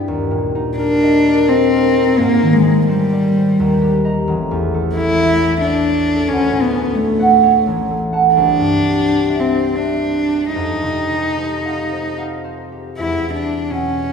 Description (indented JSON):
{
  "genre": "classical, impressionist duo for cello and harp",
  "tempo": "72-91 BPM",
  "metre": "3/4",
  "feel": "rubato",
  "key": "unclear",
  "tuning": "A4 = 440 Hz",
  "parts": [
    { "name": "concert harp", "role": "accompaniment", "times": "0.0-14.1 s", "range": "A1 to Bb5", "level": "-17 LUFS", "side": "right 2 dB", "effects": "none" },
    { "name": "warm cello", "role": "melody", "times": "0.8-14.1 s", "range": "G3 to E4", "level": "-16 LUFS", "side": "left 2 dB", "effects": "none" }
  ],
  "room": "wet church reverb, RT60 2.7 s",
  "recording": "recorded in a church or concert hall",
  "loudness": "-13 LUFS",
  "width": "side -6 dB against mid",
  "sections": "0.0-13.0 A section; 13.0-14.1 B section",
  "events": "none",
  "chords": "0.1 Ebmaj7; 2.2 Abmaj7#11; 3.6 Eb6; 4.3 A; 6.3 Dmaj7; 7.6 A6; 8.3 Cadd9; 10.6 Fsus2; 13.0 E5"
}